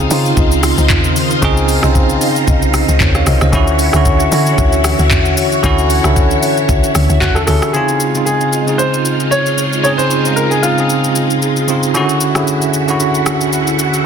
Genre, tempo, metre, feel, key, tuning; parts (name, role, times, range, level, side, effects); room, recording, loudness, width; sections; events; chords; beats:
amapiano; 114 BPM; 4/4; swing 55% on 16ths; A4 = 440 Hz
bell-like tine electric piano; accompaniment; 0.0-14.1 s; Db3 to F5; -16 LUFS; right 2 dB; fast stereo tremolo
phased string machine; sustained chords; 0.0-14.1 s; D2 to C#5; -19 LUFS; equal; ensemble chorus, phaser
marimba with soft mallets; stabs; 0.0-7.7 s; F4 to E5; -22 LUFS; left 10 dB; digital delay
deep log drum bass; bass; 0.0-7.6 s; C2 to D3; -14 LUFS; equal
afro-pop drum kit; drums; 0.1-14.0 s; handclaps, hi-hat, kick drum, rim click, shaker, toms; -16 LUFS; equal
warm baby grand piano; melody; 7.2-11.6 s; F4 to Db5; -16 LUFS; equal; digital delay
moderate recital hall reverb, RT60 1.4 s; dense, heavily limited modern master; -11 LUFS; side -7 dB against mid
0.0-7.7 A section; 7.7-14.1 B section
drop 0.0-7.7
0.0 Dbmaj9; 3.5 Dmaj9; 7.7 Dbmaj9; 11.9 Dmaj9
0.37 0.90 | 1.42 1.95 2.48 3.00 | 3.53 4.05 4.58 5.11 | 5.63 6.16 6.69 7.21 | 7.74 8.27 8.79 9.32 | 9.84 10.37 10.90 11.42 | 11.95 12.48 13.00 13.53 | 14.05